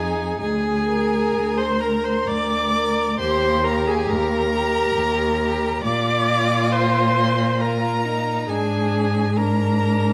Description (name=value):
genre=classical, slow romantic movement for string quartet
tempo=67 BPM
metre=3/4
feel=uneven beats, rubato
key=unclear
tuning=A4 = 440 Hz
part: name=clear violin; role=melody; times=0.0-10.1 s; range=Ab5 to D6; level=-28 LUFS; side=equal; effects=none
part: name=rich violin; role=second line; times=0.0-10.1 s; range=D4 to Bb4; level=-29 LUFS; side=equal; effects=none
part: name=clear viola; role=accompaniment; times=0.0-10.1 s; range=Ab4 to D5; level=-26 LUFS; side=equal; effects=none
part: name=rich cello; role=bass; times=0.0-10.1 s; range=D2 to Bb2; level=-25 LUFS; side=equal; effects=none
room=moderate recital hall reverb, RT60 1.6 s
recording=none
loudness=-21 LUFS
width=mono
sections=0.0-10.1 A section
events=none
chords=0.4 Bb7/D; 3.2 Eb; 5.8 Bb; 8.5 Bb7/Ab